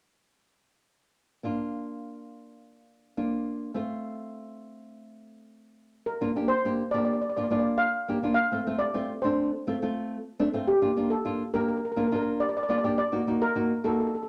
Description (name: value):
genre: calypso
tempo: 104 BPM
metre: 4/4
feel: straight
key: Bb major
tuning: A4 = 440 Hz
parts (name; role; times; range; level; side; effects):
- nylon-string guitar; accompaniment; 1.4-14.1 s; A3 to G4; -31 LUFS; equal; none
- steel pan; melody; 6.1-14.3 s; G4 to F5; -30 LUFS; equal; none
room: wet small room reverb, RT60 0.5 s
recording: none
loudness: -28 LUFS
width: mono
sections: 1.4-6.1 A section; 6.1-14.3 B section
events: none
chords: 1.4 Bb; 3.8 F; 6.1 Bb; 8.4 F; 10.7 Bb; 13.0 Ebm